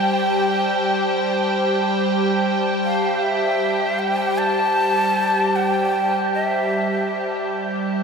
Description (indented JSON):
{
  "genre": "ambient",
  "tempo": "free time",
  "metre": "none",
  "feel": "none",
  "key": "unclear",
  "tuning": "A4 = 439 Hz",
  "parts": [
    { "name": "breathy shakuhachi", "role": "melody", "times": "0.0-7.5 s", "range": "E5 to A5", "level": "-22 LUFS", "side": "left 1 dB", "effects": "ping-pong delay" },
    { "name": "evolving wavetable pad", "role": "sustained chords", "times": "0.0-8.0 s", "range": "G3 to A5", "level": "-20 LUFS", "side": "equal", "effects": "chorus, built-in reverb" },
    { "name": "wind-like tuned noise texture", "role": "texture", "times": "0.0-8.0 s", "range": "G6", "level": "-29 LUFS", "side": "right 3 dB", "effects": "built-in reverb" }
  ],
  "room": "wet huge ambient reverb, RT60 7.7 s",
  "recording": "none",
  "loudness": "-18 LUFS",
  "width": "side -5 dB against mid",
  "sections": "0.0-8.0 A section",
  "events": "none",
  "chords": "0.0 Am7/G"
}